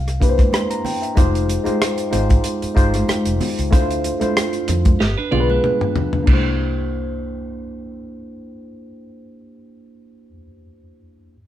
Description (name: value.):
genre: lush 1970s-style soul.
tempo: 94 BPM.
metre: 4/4.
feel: swing 54% on 16ths.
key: unclear.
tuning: A4 = 439 Hz.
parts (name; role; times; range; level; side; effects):
tine electric piano; accompaniment; 0.0-11.4 s; Ab3 to C6; -22 LUFS; left 1 dB; phaser.
vintage muted fingered electric bass; bass; 0.0-10.3 s; F1 to F2; -22 LUFS; equal; none.
warm soul drum kit; drums; 0.1-6.4 s; crash cymbal, hi-hat, kick drum, rim click, snare drum, toms; -18 LUFS; equal; none.
congas; percussion; 0.4-6.6 s; none; -28 LUFS; right 3 dB; none.
clean electric guitar; riff; 5.0-6.2 s; B3 to D5; -25 LUFS; right 6 dB; none.
room: moderate stone room reverb, RT60 0.9 s.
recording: band playing live in one room.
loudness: -16 LUFS.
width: side -12 dB against mid.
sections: 0.0-6.3 A section; 6.3-8.8 B section.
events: drum fill 5.0-6.3.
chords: 0.0 C7; 1.2 Fm9; 3.7 Dm7; 5.0 G7; 6.3 C7.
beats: 0.53 | 1.17 1.81 2.45 3.09 | 3.73 4.37 5.00 5.64 | 6.28 6.92 7.56 8.20.